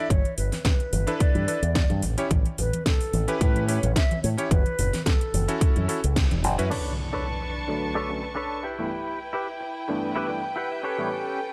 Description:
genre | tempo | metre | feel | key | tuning
nu-disco, nu disco | 109 BPM | 4/4 | swing 54% on 16ths | B minor | A4 = 440 Hz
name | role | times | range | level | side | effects
mellow hollow silver concert flute | melody | 0.0-5.8 s | A4 to E5 | -34 LUFS | equal | tape echo
bright electric grand piano | accompaniment | 0.0-11.1 s | G2 to C#5 | -33 LUFS | equal | sidechain pumping, low-pass filter
fingered electric bass with an envelope filter | bass | 0.1-6.7 s | E1 to A2 | -28 LUFS | equal | none
electronic kick drum | drums | 0.1-6.3 s | none | -24 LUFS | equal | none
house drum kit | drums | 0.1-6.8 s | crash cymbal, hi-hat, snare drum | -34 LUFS | equal | none
congas | percussion | 0.1-6.6 s | none | -35 LUFS | equal | none
warm chamber violin section | sustained chords | 6.7-11.5 s | C#4 to C#6 | -35 LUFS | equal | sidechain pumping
direct-recorded clean electric guitar | riff | 6.7-11.4 s | C#4 to G5 | -33 LUFS | equal | lush chorus, vintage 12-bit sampler grit, low-pass filter, tape echo
impact | sound effects | 6.7-8.9 s | none | -36 LUFS | equal | none
room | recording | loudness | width
light reverb | none | -25 LUFS | mono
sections
0.0-6.7 A section; 6.7-11.5 B section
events
band accent 6.2; impact 6.7-8.9; filter sweep on clean electric guitar 6.7-11.5; filter sweep on electric grand piano 6.7-11.5; clean electric guitar fill 10.0-11.1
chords
0.0 G6; 2.0 A9; 4.5 F#m7; 6.7 Bm9; 8.6 G6; 10.8 A9

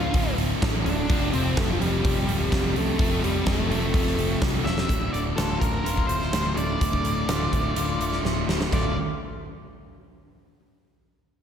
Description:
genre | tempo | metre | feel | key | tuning
quiet-loud alternative rock | 126 BPM | 4/4 | straight | D minor | A4 = 440 Hz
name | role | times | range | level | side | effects
octave-fuzz lead guitar | melody | 0.0-8.9 s | F3 to E5 | -30 LUFS | left 2 dB | distortion
sludgy distorted guitar | riff | 0.0-4.9 s | D2 to F4 | -33 LUFS | left 1 dB | overdrive
thick fuzz guitar | riff | 0.0-8.9 s | D2 to F3 | -31 LUFS | left 9 dB | distortion, slapback echo
thick fuzz guitar | riff | 0.0-8.9 s | D2 to F3 | -31 LUFS | right 10 dB | distortion, slapback echo
picked electric bass | bass | 0.0-8.9 s | D1 to C2 | -29 LUFS | equal | none
huge arena drum kit | drums | 0.1-8.8 s | crash cymbal, hi-hat, kick drum, snare drum | -26 LUFS | equal | none
electric guitar through a small old amp | arpeggios | 4.9-8.9 s | D2 to F4 | -33 LUFS | left 1 dB | wide subtle chorus, slapback echo, digital delay
room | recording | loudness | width
moderate lush hall reverb, RT60 1.9 s, small room ambience | big arena sound | -22 LUFS | side -8 dB against mid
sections
0.0-4.9 A section; 4.9-8.7 B section; 8.7-10.6 C section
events
drum fill 4.7, 8.2-8.7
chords
0.0 Dm; 1.1 F; 4.9 Dm; 8.7 D5

